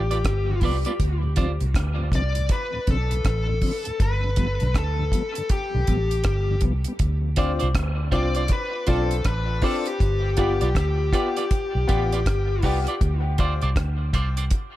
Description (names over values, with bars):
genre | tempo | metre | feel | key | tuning
dub reggae | 80 BPM | 4/4 | swing 62% on 16ths | D dorian | A4 = 441 Hz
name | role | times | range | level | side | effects
high-gain lead guitar | melody | 0.0-12.6 s | G4 to D5 | -29 LUFS | left 3 dB | distortion, dub echo
vintage muted fingered electric bass | bass | 0.0-14.5 s | G1 to D2 | -24 LUFS | equal | none
electric guitar at the edge of break-up | accompaniment | 0.1-1.5, 7.4-14.4 s | F4 to D5 | -31 LUFS | right 4 dB | high-pass filter, dub echo
deep reggae drum kit | drums | 0.1-14.7 s | hi-hat, kick drum, rim click | -24 LUFS | equal | none
mellow tonewheel organ | accompaniment | 0.5-6.9 s | D2 to C4 | -33 LUFS | left 2 dB | slow rotary speaker, dub echo
bright baby grand piano | stabs | 7.4-14.4 s | B3 to G4 | -29 LUFS | left 4 dB | high-pass filter, dub echo
room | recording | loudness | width
light reverb, small room reverb | none | -20 LUFS | side -15 dB against mid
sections
0.0-14.8 A section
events
break 0.0-7.0; filter sweep 10.0-14.8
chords
0.0 G7; 1.0 Dm7; 4.0 G7; 7.0 Dm7; 10.0 G7; 13.0 Dm7